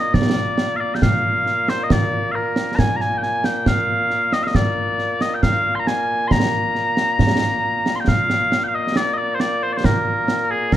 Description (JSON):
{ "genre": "scottish traditional, Scottish pipe music", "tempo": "68 BPM", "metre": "3/4", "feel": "straight", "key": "Bb mixolydian", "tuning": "A4 = 440 Hz", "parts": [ { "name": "mellow small bagpipes", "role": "melody", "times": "0.0-10.8 s", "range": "Bb2 to C6", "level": "-19 LUFS", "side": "left 1 dB", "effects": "none" }, { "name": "concert snare drum and concert bass drum", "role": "drums", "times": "0.1-10.8 s", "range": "none", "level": "-20 LUFS", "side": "right 1 dB", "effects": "none" } ], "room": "light reverb", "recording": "dark, warm production", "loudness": "-17 LUFS", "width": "side -12 dB against mid", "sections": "0.0-8.1 A section; 8.1-10.8 B section", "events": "none", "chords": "none", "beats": "| 0.13 1.02 1.90 | 2.78 3.66 4.55 | 5.43 6.31 7.19 | 8.07 8.96 9.84 | 10.72" }